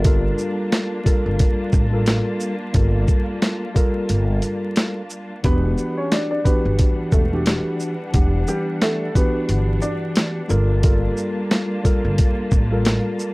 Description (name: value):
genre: hip hop, boom-bap hip-hop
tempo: 89 BPM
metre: 4/4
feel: swing 58% on 16ths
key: unclear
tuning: A4 = 442 Hz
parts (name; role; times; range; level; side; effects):
- mellow tine electric piano; accompaniment; 0.0-13.3 s; E3 to F#5; -24 LUFS; equal; medium stereo tremolo, cassette tape, high-pass filter, low-pass filter
- rich studio string section; sustained chords; 0.0-13.3 s; E3 to A5; -31 LUFS; equal; high-pass filter, low-pass filter
- upright bass; bass; 0.0-13.0 s; E1 to A1; -21 LUFS; equal; none
- boom bap sampler-style drum kit; drums; 0.0-13.3 s; hi-hat, kick drum, shaker, snare drum; -18 LUFS; equal; none
- warm upright piano; melody; 5.4-10.8 s; G3 to D5; -25 LUFS; equal; high-pass filter, low-pass filter
room: little or no reverb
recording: dry, gritty hardware recording, vinyl crackle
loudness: -17 LUFS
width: side -23 dB against mid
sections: 0.0-13.3 A section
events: none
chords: 0.0 Gm9; 5.4 Em9; 10.5 Gm9